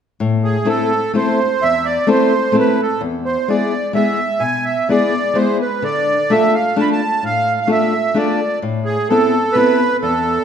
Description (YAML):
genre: musette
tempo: 129 BPM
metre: 3/4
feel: straight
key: A harmonic minor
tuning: A4 = 441 Hz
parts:
  - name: fingerpicked steel-string acoustic guitar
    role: accompaniment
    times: 0.2-10.4 s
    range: E2 to A4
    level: -17 LUFS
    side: left 2 dB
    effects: none
  - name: accordion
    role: melody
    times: 0.4-10.4 s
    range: G#4 to B5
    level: -17 LUFS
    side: right 3 dB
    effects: light tremolo tuning
room: wet recital hall reverb, RT60 1.5 s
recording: none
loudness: -14 LUFS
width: side -8 dB against mid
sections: 0.2-10.4 A section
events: none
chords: 0.2 Am; 3.0 E; 5.8 Dm; 8.6 Amadd9